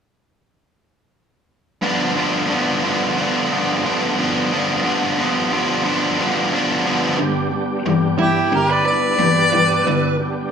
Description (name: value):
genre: rock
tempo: 90 BPM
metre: 4/4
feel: straight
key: G mixolydian, G major from 7.2 s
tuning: A4 = 440 Hz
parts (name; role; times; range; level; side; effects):
- cranked stack guitar; riff; 1.8-10.5 s; G2 to D4; -18 LUFS; equal; overdrive
- overdriven tonewheel organ; sustained chords; 7.2-10.5 s; G3 to G4; -23 LUFS; right 2 dB; slow rotary speaker, chorus vibrato
- warm harmonica; melody; 8.2-10.2 s; G4 to D5; -17 LUFS; equal; overdrive
- bluesy overdriven lead guitar; second line; 8.2-10.1 s; E4 to B4; -21 LUFS; right 2 dB; distortion
room: wet large studio reverb, RT60 1.2 s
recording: band playing live in one room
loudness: -16 LUFS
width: side -7 dB against mid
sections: 1.8-7.2 A section; 7.2-10.5 B section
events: none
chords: 1.8 G7; 7.2 G